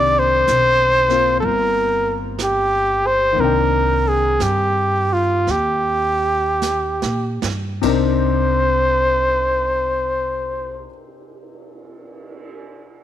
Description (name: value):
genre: jazz ballad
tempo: 48-65 BPM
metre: 4/4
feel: swing 66% on 8ths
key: C minor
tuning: A4 = 440 Hz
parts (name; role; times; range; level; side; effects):
- warm trumpet; melody; 0.0-10.8 s; F4 to D5; -17 LUFS; equal; none
- clear concert grand piano; accompaniment; 0.0-13.0 s; C3 to G5; -24 LUFS; left 13 dB; none
- upright bass; bass; 0.0-10.8 s; G1 to Bb2; -24 LUFS; right 1 dB; none
- jazz brush drum kit; drums; 0.5-12.5 s; brushed snare drum, crash cymbal, cymbal swell, hi-hat, kick drum, snare drum; -31 LUFS; right 7 dB; none
room: light reverb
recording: 1960s-style stereo with parts hard left and right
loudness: -15 LUFS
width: side -11 dB against mid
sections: 0.0-7.8 A section; 7.8-12.8 B section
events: slowing down 0.0-7.8; drum fill 6.6-7.8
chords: 0.0 Cm9